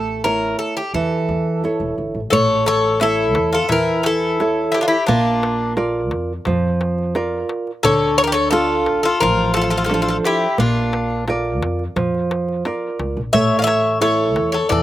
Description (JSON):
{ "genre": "greek folk, Greek bouzouki band", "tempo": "87 BPM", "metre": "4/4", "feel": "straight", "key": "A phrygian dominant", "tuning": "A4 = 441 Hz", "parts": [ { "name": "Greek bouzouki", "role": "melody", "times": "0.0-14.8 s", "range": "F4 to F5", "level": "-19 LUFS", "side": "left 1 dB", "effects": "slapback echo" }, { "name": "nylon-string guitar", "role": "accompaniment", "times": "0.0-14.8 s", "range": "D3 to D5", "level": "-20 LUFS", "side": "right 3 dB", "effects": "slapback echo" }, { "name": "upright bass", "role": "bass", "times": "0.0-14.8 s", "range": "E1 to F2", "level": "-26 LUFS", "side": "equal", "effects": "none" }, { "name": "Greek bouzouki", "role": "second line", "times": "2.3-14.8 s", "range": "D4 to D5", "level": "-21 LUFS", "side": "left 4 dB", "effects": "none" }, { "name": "darbuka", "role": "percussion", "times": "2.3-14.8 s", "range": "none", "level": "-26 LUFS", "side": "left 2 dB", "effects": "none" } ], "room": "little or no reverb", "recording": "recorded outdoors, with no room sound", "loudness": "-16 LUFS", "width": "side -14 dB against mid", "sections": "0.0-2.3 A section; 2.3-14.8 B section", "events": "none", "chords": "0.0 A; 5.1 Bb; 7.8 Dm; 10.6 Bb; 13.3 A", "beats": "0.26 0.95 1.64 | 2.33 3.02 3.71 4.39 | 5.08 5.77 6.46 7.15 | 7.83 8.52 9.21 9.90 | 10.59 11.27 11.96 12.64 | 13.33 14.02 14.70" }